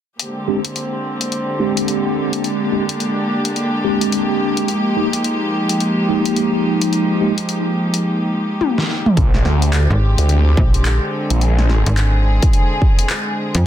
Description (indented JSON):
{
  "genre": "glitch hop",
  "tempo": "107 BPM",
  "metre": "4/4",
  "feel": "swing 61% on 16ths",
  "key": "unclear",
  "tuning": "A4 = 440 Hz",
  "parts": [
    { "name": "warm studio string section", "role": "sustained chords", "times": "0.2-13.7 s", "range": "D3 to Ab4", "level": "-20 LUFS", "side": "equal", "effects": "sidechain pumping" },
    { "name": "dubstep drum kit", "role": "drums", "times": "0.2-13.6 s", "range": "handclaps, hi-hat, snare drum, toms", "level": "-21 LUFS", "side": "left 1 dB", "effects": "none" },
    { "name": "mellow tine electric piano", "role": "stabs", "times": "0.5-7.3 s", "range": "Ab3 to G4", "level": "-19 LUFS", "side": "equal", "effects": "medium stereo tremolo, sidechain pumping, low-pass filter, ping-pong delay" },
    { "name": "phased detuned saw bass", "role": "bass", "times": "9.2-11.8 s", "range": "Bb1 to D2", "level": "-13 LUFS", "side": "equal", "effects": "phaser" },
    { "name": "electronic kick drum", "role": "drums", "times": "9.2-13.0 s", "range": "none", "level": "-14 LUFS", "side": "equal", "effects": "none" },
    { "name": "slap-like FM bass", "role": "bass", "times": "9.9-13.6 s", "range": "Ab1 to F2", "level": "-14 LUFS", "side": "equal", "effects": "tube saturation" }
  ],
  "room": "moderate studio ambience, RT60 0.5 s",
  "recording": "dense, heavily limited modern master",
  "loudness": "-15 LUFS",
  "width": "side -11 dB against mid",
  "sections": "0.2-9.2 A section; 9.2-13.7 B section",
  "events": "drum fill 8.6-9.2",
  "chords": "0.2 Bb13; 4.7 Fm11; 9.2 Bb13"
}